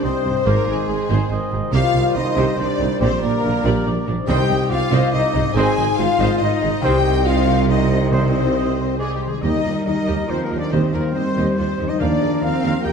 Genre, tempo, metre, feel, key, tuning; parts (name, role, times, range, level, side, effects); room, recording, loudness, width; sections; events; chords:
cinematic, heroic adventure film score; 141 BPM; 3/4; straight; C minor, Eb major from 9.4 s; A4 = 440 Hz
warm symphonic violin section; melody; 0.0-12.9 s; G4 to Ab5; -30 LUFS; left 4 dB
mellow cor anglais; second line; 0.0-9.3 s; G4 to Eb5; -31 LUFS; right 1 dB
mellow hollow flute section; second line; 0.0-12.9 s; G4 to Ab5; -28 LUFS; left 4 dB
rich chamber violin section; second line; 0.0-12.9 s; G4 to Ab5; -31 LUFS; left 2 dB
rich symphonic viola section; accompaniment; 0.0-12.9 s; D4 to F5; -30 LUFS; right 1 dB
clear trombone section; sustained chords; 0.0-12.9 s; C3 to C4; -30 LUFS; right 4 dB
dark French horn section; sustained chords; 0.0-12.9 s; G3 to Ab4; -23 LUFS; left 4 dB
concert harp; arpeggios; 0.0-12.9 s; Ab2 to D5; -29 LUFS; left 9 dB
dark trumpet; stabs; 0.0-12.9 s; Bb4 to D5; -28 LUFS; right 1 dB
mellow tuba; bass; 0.0-12.9 s; Ab1 to Eb2; -25 LUFS; right 4 dB
rich symphonic double bass section; bass; 0.0-12.9 s; Ab1 to Eb2; -25 LUFS; right 3 dB
warm symphonic cello section; bass; 0.0-12.9 s; Ab2 to C4; -24 LUFS; right 2 dB
timpani; percussion; 4.3-12.6 s; C3 to Eb3; -28 LUFS; right 1 dB
bright clarinet; second line; 9.0-12.9 s; G4 to G5; -32 LUFS; left 2 dB
moderate scoring stage reverb, RT60 1.7 s; dark, warm production; -16 LUFS; side -6 dB against mid
0.0-9.4 A section; 9.4-12.9 B section
0.5 Ab; 1.7 Cm; 3.0 Gm/Bb; 4.3 Cm; 5.6 Ab; 6.8 Cm; 9.4 Eb; 12.0 Bb/Eb